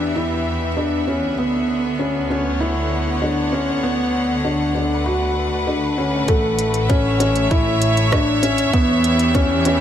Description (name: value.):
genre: piano and strings electronica.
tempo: 98 BPM.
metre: 4/4.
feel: straight.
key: unclear.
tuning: A4 = 440 Hz.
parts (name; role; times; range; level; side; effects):
clear studio string section; sustained chords; 0.0-9.8 s; A2 to F#5; -22 LUFS; equal; sidechain pumping, shimmer reverb.
felt-muted upright piano; riff; 0.0-9.8 s; A3 to F#4; -20 LUFS; left 1 dB; ping-pong delay, shimmer reverb.
warm symphonic double bass section; bass; 0.0-9.8 s; A1 to E2; -25 LUFS; right 1 dB; sidechain pumping.
electronic kick drum; drums; 6.3-9.5 s; none; -18 LUFS; right 1 dB; none.
organic electronic drum kit; drums; 6.3-9.8 s; hi-hat, rim click; -27 LUFS; right 2 dB; none.
room: moderate huge ambient reverb, RT60 5.1 s.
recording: none.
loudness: -16 LUFS.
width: side -10 dB against mid.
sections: 0.0-6.3 A section; 6.3-9.8 B section.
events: drop 6.3-9.8.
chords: 0.0 Em; 1.4 Bmadd9/D; 3.8 D6; 6.3 A; 8.7 Em.